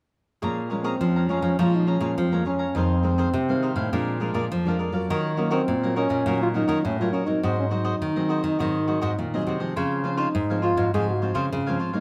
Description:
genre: samba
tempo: 103 BPM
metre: 4/4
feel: straight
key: Bb minor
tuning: A4 = 440 Hz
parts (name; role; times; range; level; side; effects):
- cavaquinho; accompaniment; 0.4-12.0 s; Eb4 to Bb5; -33 LUFS; equal; none
- nylon-string guitar; accompaniment; 0.4-12.0 s; F2 to F4; -31 LUFS; equal; none
- nylon-string guitar; bass; 0.4-11.8 s; F2 to F3; -28 LUFS; equal; none
- mellow trombone; melody; 0.7-11.4 s; Bb3 to Ab4; -28 LUFS; equal; none
room: light reverb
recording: none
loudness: -24 LUFS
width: mono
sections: 0.4-12.0 A section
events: none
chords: 0.4 Bbm7; 2.8 Fm7; 3.9 Bb7; 5.1 Ebm9; 7.4 Ab7; 9.8 Dbmaj7

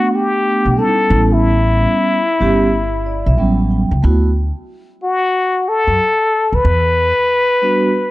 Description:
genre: hip hop, jazz-hop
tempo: 92 BPM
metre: 4/4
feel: swing 63% on 16ths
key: unclear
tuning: A4 = 440 Hz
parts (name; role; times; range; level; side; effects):
- trumpet with plunger mute; melody; 0.0-8.1 s; E4 to B4; -15 LUFS; left 2 dB; none
- vibraphone with soft mallets; accompaniment; 0.0-7.9 s; F#3 to G5; -17 LUFS; right 2 dB; none
- upright bass; bass; 0.7-7.1 s; G1 to F#2; -16 LUFS; equal; none
room: light reverb, small room reverb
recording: dark, warm production, nothing above 10.5 kHz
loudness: -12 LUFS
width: side -17 dB against mid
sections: 0.0-8.1 A section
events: vibraphone fill 2.7-4.0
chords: 0.0 Gmaj9; 1.1 A9; 3.4 A13; 4.0 D69; 6.6 Em9

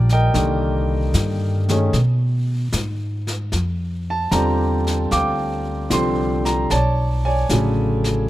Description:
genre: jazz ballad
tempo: 75 BPM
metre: 4/4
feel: swing 69% on 8ths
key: unclear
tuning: A4 = 439 Hz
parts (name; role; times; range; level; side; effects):
- warm baby grand piano; accompaniment; 0.0-8.3 s; C#3 to D6; -20 LUFS; equal; none
- upright bass; bass; 0.0-8.3 s; A1 to Cb3; -20 LUFS; equal; none
- jazz brush drum kit; drums; 0.1-8.3 s; brushed snare drum, hi-hat, snare drum; -29 LUFS; left 1 dB; none
room: little or no reverb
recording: dark, warm production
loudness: -18 LUFS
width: side -15 dB against mid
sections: 0.0-8.3 A section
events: none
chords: 0.3 Cm7; 1.9 Abm; 3.5 Bb6; 6.7 Bm9

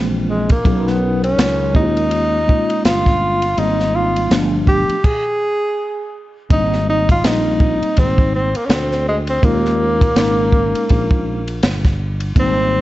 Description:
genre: hip hop, jazz-hop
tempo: 82 BPM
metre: 4/4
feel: swing 58% on 16ths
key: Ab major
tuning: A4 = 440 Hz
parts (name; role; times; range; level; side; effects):
- mellow tine electric piano; accompaniment; 0.0-12.8 s; Fb3 to A#4; -20 LUFS; equal; medium stereo tremolo
- sustaining fretless electric bass; bass; 0.0-12.8 s; G1 to Eb2; -21 LUFS; equal; analog chorus
- breathy tenor saxophone; melody; 0.3-12.8 s; Ab3 to Ab4; -18 LUFS; equal; slapback echo
- compact cocktail drum kit; drums; 0.5-12.6 s; crash cymbal, hi-hat, kick drum, ride cymbal, snare drum; -17 LUFS; equal; none
room: light reverb, small room ambience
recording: worn, warbling old tape, cassette tape, warbly pitch drift, nothing above 7.9 kHz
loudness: -14 LUFS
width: side -16 dB against mid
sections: 0.0-6.5 A section; 6.5-12.8 B section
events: stop 5.0-6.5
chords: 0.0 Gb9 (rootless); 0.7 Bmaj9; 1.8 Eb9sus4; 3.6 Abmaj9; 4.3 G9; 5.0 N.C.; 6.5 Abmaj7; 9.4 Eb7sus4

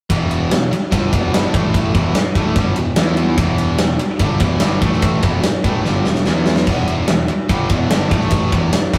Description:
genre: hard rock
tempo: 146 BPM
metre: 4/4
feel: straight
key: unclear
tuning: A4 = 441 Hz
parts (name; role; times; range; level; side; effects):
- cranked stack guitar; riff; 0.1-9.0 s; E2 to E4; -27 LUFS; equal; overdrive
- heavy high-gain guitar; riff; 0.1-9.0 s; E2 to E4; -28 LUFS; equal; distortion
- sludgy distorted guitar; riff; 0.1-9.0 s; E2 to E4; -24 LUFS; equal; overdrive
- fuzz picked electric bass; bass; 0.1-9.0 s; E1 to E2; -25 LUFS; equal; overdrive
- huge arena drum kit; drums; 0.1-9.0 s; crash cymbal, kick drum, ride cymbal, snare drum; -19 LUFS; equal; none
room: moderate small room reverb, RT60 0.5 s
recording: rough rehearsal-room recording, warm saturation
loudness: -16 LUFS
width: mono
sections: 0.1-9.0 A section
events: drum fill 5.9-6.7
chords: 0.1 E5; 1.5 A5; 1.9 E5; 4.8 A5; 5.2 E5; 8.1 A5

